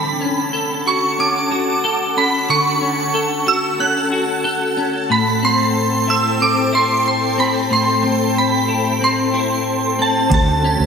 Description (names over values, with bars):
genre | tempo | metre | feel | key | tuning
dream pop | 92 BPM | 4/4 | straight | D major | A4 = 444 Hz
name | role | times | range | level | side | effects
shimmering bell with halo | melody | 0.0-10.9 s | A5 to F#6 | -18 LUFS | right 2 dB | ensemble chorus, tremolo, digital delay
ethereal airy pad | sustained chords | 0.0-10.9 s | A4 to A5 | -22 LUFS | equal | ensemble chorus, built-in reverb, tremolo
clean electric guitar | arpeggios | 0.0-10.9 s | A2 to A4 | -20 LUFS | left 3 dB | ensemble chorus, digital delay
mellow electric guitar | accompaniment | 10.3-10.9 s | D3 to A4 | -22 LUFS | right 4 dB | tremolo, ensemble chorus
vintage muted fingered electric bass | bass | 10.3-10.9 s | D2 | -19 LUFS | equal | none
booming analog drum machine | drums | 10.3-10.5 s | kick drum, ride cymbal | -18 LUFS | equal | none
room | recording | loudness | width
wet lush hall reverb, RT60 2.6 s | bright 1980s-style digital production | -15 LUFS | side -6 dB against mid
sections
0.0-10.9 A section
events
none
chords
0.0 Dmaj7; 5.1 Am9; 10.3 Dmaj7